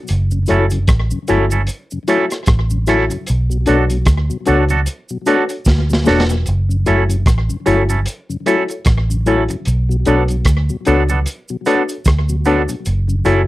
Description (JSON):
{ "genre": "lovers rock reggae", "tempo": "75 BPM", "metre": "4/4", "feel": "swing 57% on 16ths", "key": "B minor", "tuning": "A4 = 441 Hz", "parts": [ { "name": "vintage muted fingered electric bass", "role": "bass", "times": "0.1-13.5 s", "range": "E1 to D2", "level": "-16 LUFS", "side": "equal", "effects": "none" }, { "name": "crunchy breakbeat drum kit", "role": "drums", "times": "0.1-13.5 s", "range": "hi-hat, kick drum, rim click, snare drum", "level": "-17 LUFS", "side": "equal", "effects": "slapback echo" }, { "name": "cabasa", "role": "percussion", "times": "0.1-13.5 s", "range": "none", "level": "-32 LUFS", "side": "right 2 dB", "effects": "none" }, { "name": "mellow tonewheel organ", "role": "accompaniment", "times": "0.3-13.3 s", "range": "F#2 to E4", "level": "-24 LUFS", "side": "left 4 dB", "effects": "slow rotary speaker, slapback echo" }, { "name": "tine electric piano", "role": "accompaniment", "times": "0.5-13.4 s", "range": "D4 to C#5", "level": "-17 LUFS", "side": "left 3 dB", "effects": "slapback echo" }, { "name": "twangy electric guitar", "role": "stabs", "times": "0.5-13.4 s", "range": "B3 to A4", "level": "-18 LUFS", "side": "right 6 dB", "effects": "none" } ], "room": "little or no reverb", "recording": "dry, close 1970s-style studio recording", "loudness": "-13 LUFS", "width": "side -17 dB against mid", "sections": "0.0-13.5 A section", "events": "drum fill 5.7-6.5", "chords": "0.1 F#m7; 3.3 Bm7; 6.5 F#m7; 9.7 Bm7; 12.9 F#m7" }